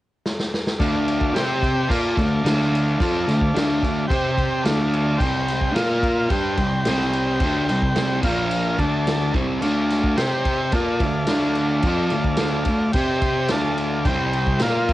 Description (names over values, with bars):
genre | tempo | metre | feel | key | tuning
garage rock duo or trio | 109 BPM | 4/4 | straight | D minor | A4 = 440 Hz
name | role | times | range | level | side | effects
vintage drum kit | drums | 0.3-14.9 s | crash cymbal, kick drum, snare drum | -25 LUFS | equal | cassette tape
combo organ | sustained chords | 0.8-14.9 s | F4 to A5 | -25 LUFS | equal | cassette tape
fuzz guitar | riff | 0.8-14.9 s | Bb2 to C5 | -22 LUFS | equal | distortion, cassette tape
fuzz picked electric bass | bass | 0.8-14.9 s | Bb1 to C3 | -27 LUFS | equal | overdrive
room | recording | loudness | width
light reverb | home recording on cassette | -18 LUFS | side -16 dB against mid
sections
0.8-14.9 A section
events
drum fill 0.3-0.8; transistor combo organ fill 13.2-14.1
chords
0.0 N.C.; 0.8 Dm; 1.4 C5; 1.9 Dm; 4.1 C5; 4.7 Dm; 5.2 C5; 5.8 Bb5; 6.3 C5; 8.2 Bb5; 8.8 D5; 9.4 C5; 9.6 Dm; 10.2 C5; 10.7 Dm; 13.0 C5; 13.5 Dm; 14.1 C5